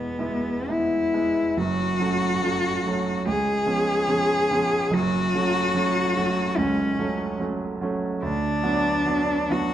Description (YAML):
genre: classical, romantic duo for cello and grand piano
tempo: 58-75 BPM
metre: 4/4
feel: rubato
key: unclear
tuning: A4 = 438 Hz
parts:
  - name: rich cello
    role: melody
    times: 0.0-9.7 s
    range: B3 to G#4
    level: -23 LUFS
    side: left 2 dB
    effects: none
  - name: clear concert grand piano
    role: accompaniment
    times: 0.0-9.7 s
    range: F#1 to E4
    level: -25 LUFS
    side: right 3 dB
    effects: none
room: wet recital hall reverb, RT60 1.5 s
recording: dark, warm production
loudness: -21 LUFS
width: side -11 dB against mid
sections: 0.0-9.7 A section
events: none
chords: 0.0 E; 1.6 F#m; 3.3 C#7; 4.9 F#m; 8.2 Bm/D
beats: 0.70 | 1.57 2.44 3.27 4.10 | 4.93 5.75 6.58 7.41 | 8.23 9.06